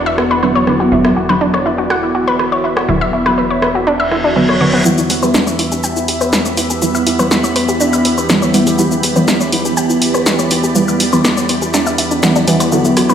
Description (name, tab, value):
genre	melodic techno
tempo	122 BPM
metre	4/4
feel	straight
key	E minor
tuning	A4 = 440 Hz
part	evolving wavetable pad	sustained chords	0.0-13.1 s	E3 to B5	-18 LUFS	equal	phaser, built-in reverb
part	synth brass stab	stabs	0.0-13.1 s	D3 to B3	-16 LUFS	equal	chorus, phaser, ping-pong delay
part	plucky analog bass	bass	0.0-13.1 s	E1 to E2	-29 LUFS	equal	none
part	analog drone	drone	0.0-13.1 s	E2	-24 LUFS	right 1 dB	chorus
part	analog pluck	arpeggios	0.1-13.1 s	B3 to G5	-17 LUFS	left 1 dB	chorus, ping-pong delay
part	punchy analog drum machine	drums	0.2-13.1 s	hi-hat, rim click, shaker, snare drum	-17 LUFS	equal	high-pass filter on snare, high-pass filter on perc, high-pass filter on hats, high-pass filter on room
part	reverse cymbal and riser	sound effects	4.0-4.9, 12.7-13.1 s	none	-22 LUFS	right 1 dB	none
room	wet lush hall reverb, RT60 2.4 s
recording	played on a big sound system in a bare room, large studio reverb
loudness	-11 LUFS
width	side -8 dB against mid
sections	0.0-4.9 A section; 4.9-13.1 B section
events	reverse cymbal 4.0-4.9; build-up 4.9-13.1; filter sweep on synth stab 4.9-13.1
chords	0.0 Bm/E; 4.9 Em